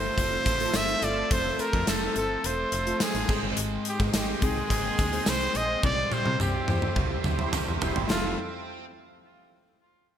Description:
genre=1980s-style pop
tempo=106 BPM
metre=4/4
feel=straight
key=unclear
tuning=A4 = 441 Hz
part: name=warm trumpet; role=melody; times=0.0-8.4 s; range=F4 to E5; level=-29 LUFS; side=equal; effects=none
part: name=glassy digital keys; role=accompaniment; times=0.0-8.4 s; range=F2 to G5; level=-35 LUFS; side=left 2 dB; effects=chorus
part: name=tight distorted guitar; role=accompaniment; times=0.0-8.8 s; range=F2 to C4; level=-39 LUFS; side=right 2 dB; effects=none
part: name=sweeping resonant pad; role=sustained chords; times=0.0-8.4 s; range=F3 to C6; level=-37 LUFS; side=equal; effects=chorus
part: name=slap-like FM bass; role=bass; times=0.0-8.4 s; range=E1 to C3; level=-33 LUFS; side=equal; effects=none
part: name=gated 80s drum kit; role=drums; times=0.2-8.2 s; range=crash cymbal, hi-hat, kick drum, snare drum, tambourine, toms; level=-28 LUFS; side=equal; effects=gated reverb
part: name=tambourine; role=percussion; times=0.2-8.4 s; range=none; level=-43 LUFS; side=right 10 dB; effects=none
part: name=mellow synth brass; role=stabs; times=0.6-8.4 s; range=F3 to C5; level=-37 LUFS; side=right 2 dB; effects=chorus
room=moderate plate reverb, RT60 2.3 s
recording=bright 1980s-style digital production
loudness=-24 LUFS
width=side -9 dB against mid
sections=0.0-8.1 A section; 8.1-10.2 B section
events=drum fill 5.8-8.1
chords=0.0 Fmaj7; 3.3 Abmaj7; 5.8 C; 8.1 Fmaj7

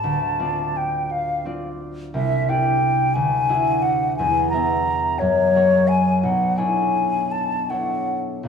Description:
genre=classical, impressionist duo for flute and harp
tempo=58 BPM (dotted quarters)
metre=6/8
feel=uneven beats, rubato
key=unclear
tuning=A4 = 440 Hz
part: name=mellow hollow silver concert flute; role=melody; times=0.0-8.2 s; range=C#5 to Bb5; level=-20 LUFS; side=left 2 dB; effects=none
part: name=concert harp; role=accompaniment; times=0.0-8.5 s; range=Bb1 to E5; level=-22 LUFS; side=right 1 dB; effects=none
room=wet recital hall reverb, RT60 1.6 s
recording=none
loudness=-18 LUFS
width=side -6 dB against mid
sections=0.0-8.5 A section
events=none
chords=0.0 Dm7; 2.1 Cadd9; 3.2 Dadd9; 4.2 Esus2; 5.2 F#add9; 6.2 Bm11

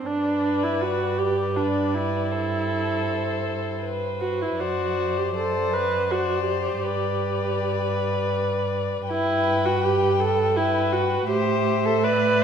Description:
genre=classical, slow romantic movement for string quartet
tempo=80 BPM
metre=3/4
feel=rubato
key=G major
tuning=A4 = 440 Hz
part: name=muted viola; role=accompaniment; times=0.0-12.4 s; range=D4 to B4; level=-24 LUFS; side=right 2 dB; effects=none
part: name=muted cello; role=bass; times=0.0-12.4 s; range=F#2 to A2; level=-29 LUFS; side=right 6 dB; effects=none
part: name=muted violin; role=melody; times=0.1-12.4 s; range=C5 to G5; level=-29 LUFS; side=left 11 dB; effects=none
part: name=muted violin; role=second line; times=0.1-12.4 s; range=A4 to D5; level=-28 LUFS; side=left 4 dB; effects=none
room=wet recital hall reverb, RT60 1.4 s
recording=minimal, uncompressed stereo recording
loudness=-21 LUFS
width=side -7 dB against mid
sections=0.1-12.4 A section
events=none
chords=0.1 G; 2.3 Am7/G; 4.6 D7/F#; 6.8 G; 9.1 Gmaj13; 11.3 Am

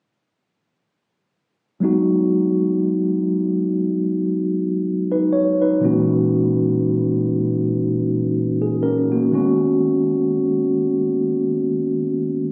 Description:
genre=R&B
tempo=60 BPM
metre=4/4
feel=swing 58% on 16ths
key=G# minor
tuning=A4 = 441 Hz
part: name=mellow tine electric piano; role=accompaniment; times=1.8-12.5 s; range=A#2 to C#5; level=-19 LUFS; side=equal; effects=none
room=moderate lush hall reverb, RT60 2.7 s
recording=recorded on a phone in the room, studio reverb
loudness=-19 LUFS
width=mono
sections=1.8-12.5 A section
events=none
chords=1.8 G#m7; 5.8 F#7/A#; 9.3 B6

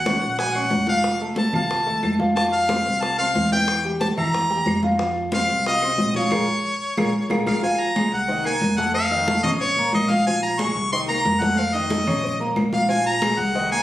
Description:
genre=latin, salsa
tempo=182 BPM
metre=4/4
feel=straight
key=Bb minor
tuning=A4 = 442 Hz
part: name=clear harmonica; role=melody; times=0.0-13.8 s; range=Db5 to Db6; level=-22 LUFS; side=left 1 dB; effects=none
part: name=upright bass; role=bass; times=0.0-13.8 s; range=F1 to F2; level=-31 LUFS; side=equal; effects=none
part: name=clear grand piano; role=accompaniment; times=0.1-13.8 s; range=Eb3 to Gb6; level=-25 LUFS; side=equal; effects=none
part: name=bongos and cowbell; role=percussion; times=0.1-13.8 s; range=none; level=-34 LUFS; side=left 4 dB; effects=none
part: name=claves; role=percussion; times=0.1-13.8 s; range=none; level=-34 LUFS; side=right 1 dB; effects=none
part: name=congas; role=percussion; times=0.1-13.8 s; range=none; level=-25 LUFS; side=equal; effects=none
room=moderate studio reverb, RT60 0.6 s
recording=recorded on a phone in the room, studio reverb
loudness=-19 LUFS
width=side -14 dB against mid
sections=0.0-7.6 A section; 7.6-13.8 B section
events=band accent 6.3-7.6; drum fill 7.0-7.6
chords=0.0 Ebm7; 1.0 F; 3.7 Gm13/E; 5.0 F5; 6.3 Bbm7; 7.6 Bb5; 8.3 Ab13/C; 8.9 F7; 9.6 Bbm; 10.3 Bbm7; 10.9 Cm7b5; 11.6 F7; 12.2 Bbm; 12.9 Bb5

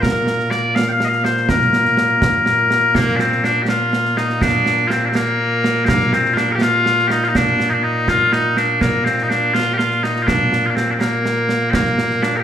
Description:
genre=scottish traditional, Scottish pipe music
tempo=82 BPM (dotted quarters)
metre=6/8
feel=straight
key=Bb major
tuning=A4 = 440 Hz
part: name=loud bright bagpipes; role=melody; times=0.0-12.4 s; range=Bb2 to G5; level=-15 LUFS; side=left 1 dB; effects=none
part: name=concert snare drum and concert bass drum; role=drums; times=0.0-12.3 s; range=none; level=-21 LUFS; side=right 2 dB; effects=none
room=wet recital hall reverb, RT60 1.6 s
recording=recorded in a church or concert hall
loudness=-14 LUFS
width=side -9 dB against mid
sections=0.0-3.0 A section; 3.0-12.4 A section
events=none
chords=none

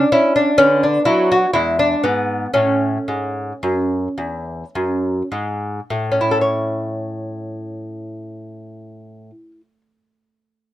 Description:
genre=classical, baroque-style dance for lute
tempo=51-64 BPM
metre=3/4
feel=rubato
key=A major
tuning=A4 = 440 Hz
part: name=lute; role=solo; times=0.0-9.8 s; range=E2 to C#5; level=-16 LUFS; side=equal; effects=none
room=little or no reverb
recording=close, detailed microphones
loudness=-16 LUFS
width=side -14 dB against mid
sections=0.0-5.9 A section; 5.9-9.4 B section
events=slowing down 0.0-5.9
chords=0.0 N.C.; 0.6 Bm/D; 1.6 E; 2.6 A

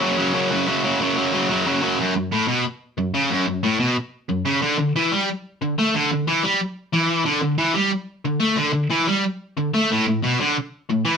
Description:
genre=metal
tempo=182 BPM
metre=4/4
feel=straight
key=F# phrygian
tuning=A4 = 440 Hz
part: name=distorted electric guitar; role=solo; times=0.0-11.2 s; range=F#2 to A3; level=-18 LUFS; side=equal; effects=overdrive
room=moderate studio reverb, RT60 0.6 s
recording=band playing live in one room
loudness=-19 LUFS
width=side -6 dB against mid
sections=0.0-2.0 A section; 2.0-11.2 B section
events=none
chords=0.0 F#5; 2.0 F#m; 4.6 D5; 9.9 A5

